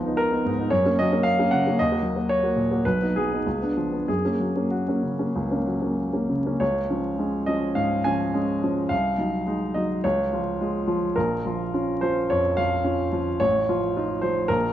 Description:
classical, romantic character piece for solo piano; 92-115 BPM; 4/4; rubato; F# major, Db major from 6.6 s; A4 = 440 Hz
clear baby grand piano; solo; 0.0-14.7 s; A1 to Ab5; -21 LUFS; equal
wet large studio reverb, RT60 1.2 s; vinyl crackle, nothing above 7.7 kHz; -21 LUFS; side -12 dB against mid
0.0-6.6 A section; 6.6-14.7 B section
0.0 C#13 (rootless); 0.7 F#; 1.8 D#m; 2.9 B; 3.5 C#7b9; 4.1 F#; 6.6 Db; 8.9 Ab7/C; 10.0 Db; 11.2 Bbm; 13.4 F7/A

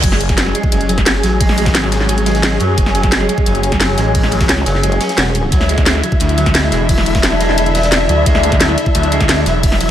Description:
dark technical drum and bass; 175 BPM; 4/4; straight; F# minor; A4 = 440 Hz
dark symphonic string section; sustained chords; 0.0-9.9 s; D3 to E5; -20 LUFS; left 1 dB; vintage 12-bit sampler grit, sidechain pumping
semi-hollow electric guitar; arpeggios; 0.0-9.9 s; F#3 to F#4; -22 LUFS; right 2 dB; sidechain pumping, tape echo
phased detuned saw bass; bass; 0.0-9.9 s; E1 to F#2; -17 LUFS; equal; phaser
crunchy breakbeat drum kit; drums; 0.0-9.9 s; hi-hat, ride cymbal, snare drum; -27 LUFS; equal; high-pass filter on cymbals, high-pass filter on hats, high-pass filter on snare, high-pass filter on room
drum and bass drum kit; drums; 0.0-9.9 s; crash cymbal, hi-hat, snare drum; -17 LUFS; equal
electronic kick drum; drums; 0.0-9.7 s; -16 LUFS; equal; overdrive
warbly tape-like pad; texture; 0.0-9.9 s; E4 to A5; -22 LUFS; left 2 dB; chorus, built-in reverb, phaser, sidechain pumping
pulsing pluck wobble bass; bass; 4.5-5.5 s; E1 to C#2; -16 LUFS; equal; chorus
light reverb, small room ambience; -11 LUFS; side -11 dB against mid
0.0-9.9 A section
fade-in on ambient pad 0.0-9.9
0.0 F#madd9; 5.5 Dsus2

